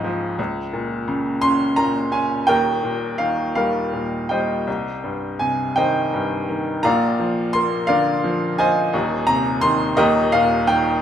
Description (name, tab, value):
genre	classical, lyrical solo piano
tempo	56 BPM (dotted quarters)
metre	6/8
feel	uneven beats, rubato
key	unclear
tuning	A4 = 440 Hz
part	bright upright piano	solo	0.0-11.0 s	Eb1 to C6	-18 LUFS	equal	none
room	moderate recital hall reverb, RT60 1.4 s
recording	minimal, uncompressed stereo recording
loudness	-18 LUFS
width	side -9 dB against mid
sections	0.0-11.0 A section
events	none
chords	0.4 Bbm/Db; 2.5 Ebadd9; 4.7 Cm; 6.8 Bb; 8.9 Abadd9/Eb; 10.0 Eb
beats	| 0.39 1.43 | 2.48 3.56 | 4.67 5.77 | 6.84 7.89 | 8.93 9.97